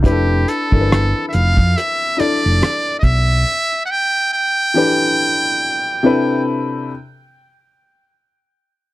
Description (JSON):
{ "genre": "R&B, neo-soul", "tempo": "70 BPM", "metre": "4/4", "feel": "swing 59% on 16ths", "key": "unclear", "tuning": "A4 = 441 Hz", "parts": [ { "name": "warm upright piano", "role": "accompaniment", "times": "0.0-6.9 s", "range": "C3 to D5", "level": "-18 LUFS", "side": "left 2 dB", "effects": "none" }, { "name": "cloth-damped thuddy drum kit", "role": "drums", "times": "0.0-3.3 s", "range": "hi-hat, kick drum, rim click", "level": "-16 LUFS", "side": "equal", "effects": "none" }, { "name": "trumpet with metal mute", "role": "melody", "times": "0.1-6.4 s", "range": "G4 to G5", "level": "-18 LUFS", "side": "right 1 dB", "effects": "none" }, { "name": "hollow-body short-scale fingered electric bass", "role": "bass", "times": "0.1-3.4 s", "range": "F1 to F2", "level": "-16 LUFS", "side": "equal", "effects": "none" } ], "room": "light reverb", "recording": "dark, warm production", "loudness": "-14 LUFS", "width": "side -17 dB against mid", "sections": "0.0-6.9 A section", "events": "none", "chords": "0.0 Fmaj13; 3.5 Em7; 6.0 Cmaj9", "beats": "| 0.04 0.90 1.75 2.61 | 3.47 4.33 5.18 6.04" }